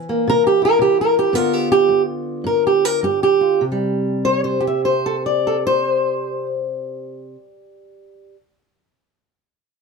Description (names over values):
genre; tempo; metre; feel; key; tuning
acoustic country blues, solo or duo; 98-116 BPM; 4/4; swing 64% on 8ths; C mixolydian; A4 = 440 Hz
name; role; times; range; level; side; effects
fingerpicked steel-string acoustic guitar; solo; 0.0-8.3 s; G2 to E5; -16 LUFS; right 1 dB; none
room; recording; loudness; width
light reverb; close, detailed microphones; -16 LUFS; side -4 dB against mid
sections
0.0-3.6 A section; 3.6-8.5 B section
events
slowing down 0.0-3.6; steel-string acoustic guitar solo 0.0-3.6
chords
0.0 C7; 1.3 G7; 3.6 C5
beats
0.28 0.81 | 1.34 1.89 2.45 3.02 | 3.62 4.23 4.84 5.45 | 6.06 6.67 7.28 7.89